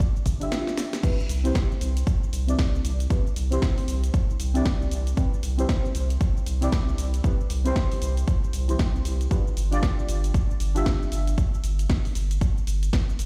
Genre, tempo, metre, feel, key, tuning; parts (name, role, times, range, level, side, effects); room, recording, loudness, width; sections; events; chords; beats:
deep house; 116 BPM; 4/4; swing 60% on 16ths; C major; A4 = 440 Hz
deep mellow chord stab; stabs; 0.0-11.4 s; C4 to E5; -33 LUFS; equal; chorus, phaser, sidechain pumping, digital delay
electronic kick drum; drums; 0.0-13.1 s; -25 LUFS; equal
house drum kit; drums; 0.0-13.3 s; crash cymbal, hi-hat, shaker, snare drum; -37 LUFS; equal
round analog bass; bass; 0.3-13.3 s; G1 to C2; -27 LUFS; equal; sidechain pumping
little or no reverb; played on a big sound system in a bare room, stone room reverb; -25 LUFS; mono
0.0-13.3 A section
kick drops out 0.5-1.0; drum fill 0.6-1.0
0.0 G7(no3); 1.0 Cmaj7; 9.3 G7(no3)
0.00 0.52 | 1.03 1.55 2.07 2.59 | 3.10 3.62 4.14 4.66 | 5.17 5.69 6.21 6.72 | 7.24 7.76 8.28 8.79 | 9.31 9.83 10.34 10.86 | 11.38 11.90 12.41 12.93